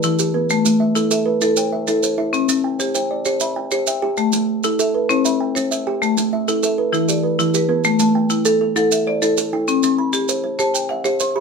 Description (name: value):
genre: southern african traditional, mbira-style interlocking cycle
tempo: 131 BPM (dotted quarters)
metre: 12/8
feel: straight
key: A equiheptatonic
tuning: A4 = 440 Hz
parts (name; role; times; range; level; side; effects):
- kalimba; arpeggios; 0.0-11.4 s; E3 to B5-29c; -20 LUFS; right 4 dB; none
- marimba with hard mallets; arpeggios; 0.0-11.4 s; E3 to C6+43c; -19 LUFS; left 5 dB; none
- maracas; percussion; 0.0-11.3 s; none; -24 LUFS; right 6 dB; none
room: light reverb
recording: band playing live in one room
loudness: -16 LUFS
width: side -5 dB against mid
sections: 0.0-7.8 A section; 7.8-11.4 B section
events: none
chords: 0.0 Em; 0.5 Am; 2.3 C; 4.2 A5; 5.1 C; 6.0 A5; 6.9 Em; 7.8 Am; 9.7 C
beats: 0.04 | 0.50 0.96 1.42 1.88 | 2.34 2.80 3.26 3.72 | 4.18 4.64 5.10 5.56 | 6.01 6.47 6.93 7.39 | 7.85 8.31 8.76 9.22 | 9.68 10.13 10.59 11.05